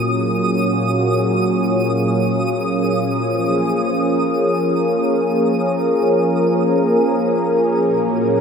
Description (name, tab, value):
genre	ambient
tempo	free time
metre	none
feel	none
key	Bb minor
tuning	A4 = 437 Hz
part	warm analog pad	sustained chords	0.0-8.4 s	Bb2 to Bb4	-16 LUFS	equal	chorus, shimmer reverb
part	analog drone	drone	0.0-8.4 s	Bb3 to F4	-24 LUFS	left 1 dB	chorus
part	twinkling granular texture	texture	0.0-8.4 s	Eb6	-27 LUFS	right 1 dB	built-in reverb, shimmer reverb
room	wet concert hall reverb, RT60 2.3 s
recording	none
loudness	-15 LUFS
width	side -6 dB against mid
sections	0.0-8.4 A section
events	fade-out on synth texture 0.0-8.4; filter sweep on analog synth pad 0.0-8.4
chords	0.0 Gbadd9/Bb; 3.2 Bbm7; 7.8 Gbadd9/Bb